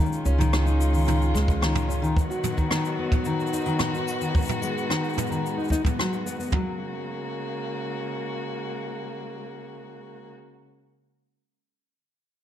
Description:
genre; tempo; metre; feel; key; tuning
folktronica; 110 BPM; 4/4; straight; F# major; A4 = 440 Hz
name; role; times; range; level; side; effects
dark string quartet; sustained chords; 0.0-10.3 s; C#3 to F#4; -30 LUFS; left 1 dB; none
fingerpicked steel-string acoustic guitar; arpeggios; 0.0-6.8 s; D#3 to F#4; -28 LUFS; left 2 dB; vintage 12-bit sampler grit, low-pass filter, tape echo
jazz brush drum kit; drums; 0.1-6.5 s; rim click, shaker, toms; -30 LUFS; equal; none
upright bass; bass; 0.3-2.1 s; C#2; -23 LUFS; equal; none
jazz brush drum kit; drums; 1.3-6.7 s; kick drum, toms; -24 LUFS; equal; none
room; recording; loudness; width
moderate echo chamber reverb, RT60 1.4 s; dark, warm production; -23 LUFS; side -11 dB against mid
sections
0.0-6.5 A section; 6.5-10.9 B section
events
none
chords
0.0 C#add9; 2.2 B; 4.3 G#m7; 6.5 F#add9

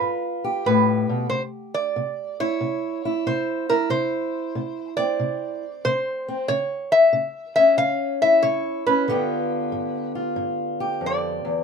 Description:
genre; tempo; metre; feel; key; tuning
acoustic country blues, solo or duo; 93 BPM; 4/4; swing 67% on 8ths; unclear; A4 = 440 Hz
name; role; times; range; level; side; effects
metal-body resonator slide guitar; melody; 0.0-11.6 s; Bb4 to E#5; -21 LUFS; left 1 dB; none
fingerpicked steel-string acoustic guitar; accompaniment; 0.0-11.6 s; E2 to G4; -25 LUFS; equal; none
room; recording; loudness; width
moderate booth ambience, RT60 0.2 s; minimal, uncompressed stereo recording; -20 LUFS; side -6 dB against mid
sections
0.0-11.6 A section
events
none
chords
0.0 G7; 1.3 C; 6.5 C#m; 9.1 G7

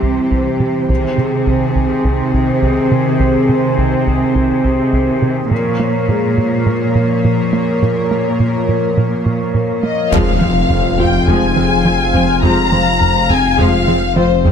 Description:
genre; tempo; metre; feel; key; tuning
cinematic, hybrid orchestral and electronic film score; 104 BPM; 4/4; straight; F minor; A4 = 440 Hz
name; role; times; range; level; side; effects
chorused pulse-width pad; sustained chords; 0.0-14.5 s; Eb3 to F5; -17 LUFS; left 2 dB; none
tight sequencer bass; riff; 0.0-14.5 s; C2 to Bb3; -18 LUFS; right 2 dB; none
rich symphonic cello section; bass; 0.0-14.5 s; F2 to C3; -18 LUFS; right 2 dB; none
felt-muted upright piano; texture; 0.0-14.5 s; G3 to Ab4; -28 LUFS; left 3 dB; tape echo
warm symphonic violin section; melody; 9.8-14.5 s; C5 to Bb5; -16 LUFS; left 5 dB; none
warm symphonic viola section; accompaniment; 10.1-14.5 s; F3 to F4; -21 LUFS; right 1 dB; none
swelling detuned saw bass; bass; 10.1-14.5 s; F1; -19 LUFS; left 1 dB; none
taiko ensemble; drums; 10.1-11.3 s; none; -23 LUFS; left 1 dB; none
impact; sound effects; 10.1-12.4 s; none; -23 LUFS; left 1 dB; none
room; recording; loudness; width
moderate scoring stage reverb, RT60 1.5 s; close, detailed microphones; -12 LUFS; side -7 dB against mid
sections
0.0-10.1 A section; 10.1-14.5 B section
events
build-up 0.0-10.1; impact 10.1-12.4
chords
0.0 C; 0.9 Ab/C; 5.5 Bbm; 10.1 Fm

